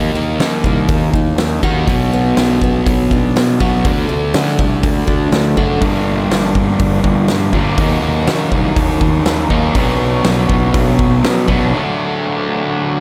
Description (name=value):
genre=quiet-loud alternative rock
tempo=122 BPM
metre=4/4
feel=straight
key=unclear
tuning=A4 = 439 Hz
part: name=picked steel-string acoustic guitar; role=arpeggios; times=0.0-5.8 s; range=B2 to Gb4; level=-24 LUFS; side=equal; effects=analog delay
part: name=sludgy distorted guitar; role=riff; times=0.0-13.0 s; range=G2 to Eb4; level=-20 LUFS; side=equal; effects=overdrive
part: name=fuzz fingered electric bass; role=bass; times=0.0-11.7 s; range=F#1 to Eb3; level=-21 LUFS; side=equal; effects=overdrive
part: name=big rock drum kit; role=drums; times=0.4-11.6 s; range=hi-hat, kick drum, snare drum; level=-20 LUFS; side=equal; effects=none
part: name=fuzz guitar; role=riff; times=5.8-13.0 s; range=G2 to Eb4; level=-20 LUFS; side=equal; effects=distortion
room=light reverb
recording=none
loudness=-15 LUFS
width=mono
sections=0.0-13.0 A section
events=break 11.7-13.0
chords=0.0 Ebm; 1.9 Bm; 3.9 D; 5.8 Gm; 7.8 Ebm; 9.8 Bm; 11.7 D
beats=0.41 0.90 1.39 | 1.88 2.38 2.87 3.36 | 3.85 4.35 4.84 5.33 | 5.82 6.32 6.81 7.30 | 7.79 8.28 8.78 9.27 | 9.76 10.25 10.74 11.24 | 11.73 12.22 12.71